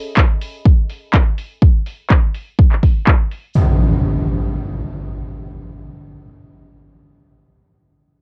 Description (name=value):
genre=piano house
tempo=124 BPM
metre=4/4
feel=swing 55% on 16ths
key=none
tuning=none
part: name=electronic kick drum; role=drums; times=0.2-3.2 s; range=none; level=-14 LUFS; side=equal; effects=overdrive, small room ambience, cassette tape
part: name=house drum kit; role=drums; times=0.2-3.4 s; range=handclaps, hi-hat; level=-23 LUFS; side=equal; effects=overdrive, low-pass filter on hats, small room ambience, cassette tape, low-pass filter on snare
part: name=impact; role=sound effects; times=3.6-6.8 s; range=none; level=-20 LUFS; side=equal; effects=none
room=light reverb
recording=home recording on cassette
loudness=-16 LUFS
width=mono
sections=0.0-3.6 A section; 3.6-7.4 B section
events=none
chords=none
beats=0.17 0.65 1.14 | 1.62 2.10 2.59 3.07 | 3.55 4.04 4.52 5.01 | 5.49 5.97 6.46